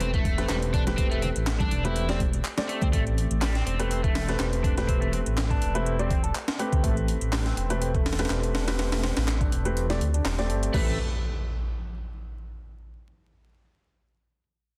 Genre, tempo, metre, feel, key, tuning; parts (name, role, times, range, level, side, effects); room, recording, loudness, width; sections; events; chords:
breakbeat, breaks; 123 BPM; 4/4; swing 54% on 16ths; A minor; A4 = 440 Hz
overdriven electric guitar; riff; 0.0-11.0 s; G3 to A4; -37 LUFS; equal; tube saturation, low-pass filter, delay
clear grand piano; stabs; 0.0-10.9 s; A3 to D5; -34 LUFS; equal; low-pass filter, delay
dark detuned saw bass; bass; 0.0-11.0 s; E1 to D2; -30 LUFS; equal
breakbeat sampler-style drum kit; drums; 0.0-10.8 s; crash cymbal, hi-hat, kick drum, snare drum; -30 LUFS; equal
garage drum kit; drums; 0.0-10.7 s; handclaps, hi-hat; -40 LUFS; equal
congas; percussion; 0.0-2.9 s; -38 LUFS; equal
impact; sound effects; 10.8-12.7 s; -34 LUFS; equal
light reverb; dense, heavily limited modern master, vinyl crackle; -26 LUFS; mono
0.0-10.7 A section; 10.7-12.7 B section
filter sweep on overdriven electric guitar 0.0-10.7
0.0 Am9; 10.7 N.C.